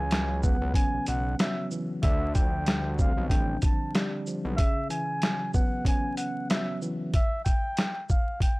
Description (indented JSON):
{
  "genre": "hip hop, boom-bap hip-hop",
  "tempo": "94 BPM",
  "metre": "4/4",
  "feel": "swing 55% on 16ths",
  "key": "unclear",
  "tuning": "A4 = 442 Hz",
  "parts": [
    { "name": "trumpet with bucket mute", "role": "melody", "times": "0.0-8.6 s", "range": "E5 to A5", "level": "-33 LUFS", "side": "equal", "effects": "high-pass filter, low-pass filter" },
    { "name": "tine electric piano", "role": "accompaniment", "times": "0.0-7.2 s", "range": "C#3 to D4", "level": "-32 LUFS", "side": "equal", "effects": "overdrive, slow stereo tremolo, cassette tape, high-pass filter, low-pass filter" },
    { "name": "fat analog bass", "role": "bass", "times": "0.0-4.6 s", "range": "A1 to D2", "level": "-30 LUFS", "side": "equal", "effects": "none" },
    { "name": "boom bap sampler-style drum kit", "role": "drums", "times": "0.1-8.6 s", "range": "hi-hat, kick drum, shaker, snare drum", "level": "-26 LUFS", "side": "equal", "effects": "none" }
  ],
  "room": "little or no reverb",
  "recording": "dry, gritty hardware recording, transformer saturation, vinyl crackle",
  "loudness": "-25 LUFS",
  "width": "side -23 dB against mid",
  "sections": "0.0-8.6 A section",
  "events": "none",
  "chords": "0.0 C#m7; 2.0 Dm7; 4.6 C#m7; 7.1 N.C."
}